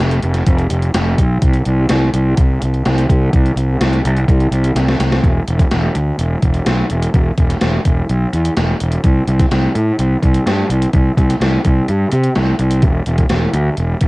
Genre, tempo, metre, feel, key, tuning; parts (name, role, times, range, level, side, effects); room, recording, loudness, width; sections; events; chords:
rock, shoegaze and dream pop; 126 BPM; 4/4; straight; A4 = 439 Hz
fuzz fingered electric bass; bass; 0.0-14.1 s; E1 to C3; -14 LUFS; equal; overdrive
gated 80s digital drum machine; drums; 0.1-14.1 s; hi-hat, kick drum, snare drum; -16 LUFS; equal; gated reverb, gated reverb snare, cassette tape
little or no reverb; home recording on cassette; -12 LUFS; side -22 dB against mid
0.0-5.2 A section; 5.2-14.1 B section
drum fill 4.8-5.2